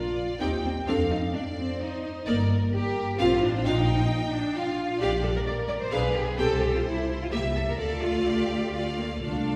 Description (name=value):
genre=quick classical-period movement for string orchestra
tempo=129 BPM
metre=3/4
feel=rubato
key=Bb major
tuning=A4 = 443 Hz
part: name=warm symphonic violin section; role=second line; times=0.0-9.6 s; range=G#4 to G5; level=-38 LUFS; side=equal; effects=none
part: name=rich symphonic cello section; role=bass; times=0.0-9.6 s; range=Bb3 to D5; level=-32 LUFS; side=equal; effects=none
part: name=rich symphonic violin section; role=melody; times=0.4-9.6 s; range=D5 to G5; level=-39 LUFS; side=equal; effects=none
part: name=warm symphonic viola section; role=accompaniment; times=0.4-9.6 s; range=A3 to Bb4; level=-32 LUFS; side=equal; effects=none
part: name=dark symphonic double bass section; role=bass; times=0.4-9.6 s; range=G1 to F2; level=-32 LUFS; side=equal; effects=none
room=wet concert hall reverb, RT60 2.1 s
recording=recorded in a church or concert hall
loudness=-27 LUFS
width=mono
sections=0.0-9.6 A section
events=none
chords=0.4 Cm/Eb; 0.9 F7; 2.3 Gm; 3.2 F/A; 3.6 Bb; 5.0 Gm7/Bb; 5.9 Bdim7; 6.4 C; 7.3 C7; 7.8 Dm